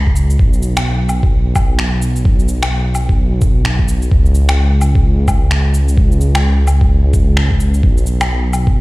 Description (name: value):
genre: future garage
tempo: 129 BPM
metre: 4/4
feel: swing 60% on 16ths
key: unclear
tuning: A4 = 440 Hz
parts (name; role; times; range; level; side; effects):
- dark detuned saw bass; bass; 0.0-8.8 s; B1 to C#2; -13 LUFS; equal; tube saturation, sidechain pumping
- electronic kick drum; drums; 0.1-8.7 s; none; -13 LUFS; equal; none
- electronic shaker, finger snaps and woodblock; drums; 0.2-8.6 s; none; -21 LUFS; left 1 dB; none
room: little or no reverb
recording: played on a big sound system in a bare room, stone room reverb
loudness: -11 LUFS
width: side -21 dB against mid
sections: 0.0-8.8 A section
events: none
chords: none